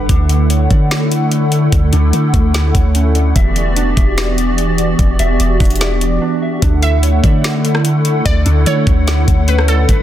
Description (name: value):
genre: hip hop, atmospheric cloud-rap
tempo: 147 BPM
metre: 4/4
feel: half-time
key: D major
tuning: A4 = 445 Hz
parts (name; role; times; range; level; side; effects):
- hollow soft pad; sustained chords; 0.0-10.0 s; D3 to F#5; -17 LUFS; equal; ensemble chorus, sidechain pumping
- mellow electric guitar; arpeggios; 0.0-10.0 s; A3 to F#5; -24 LUFS; right 1 dB; lush chorus, tape echo
- soft 808-style bass; bass; 0.0-10.0 s; E1 to D3; -14 LUFS; equal; none
- smooth R&B drum kit; drums; 0.1-10.0 s; hi-hat, kick drum, rim click, snare drum; -15 LUFS; equal; none
- glassy wavetable pluck; melody; 6.8-9.9 s; A4 to E5; -21 LUFS; right 2 dB; chorus, tape echo
room: digital ambience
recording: dense, heavily limited modern master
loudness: -11 LUFS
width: side -12 dB against mid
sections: 0.0-6.6 A section; 6.6-10.0 B section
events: break 6.2-6.6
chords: 0.1 Dmaj7; 3.4 Em7; 6.6 Dmaj7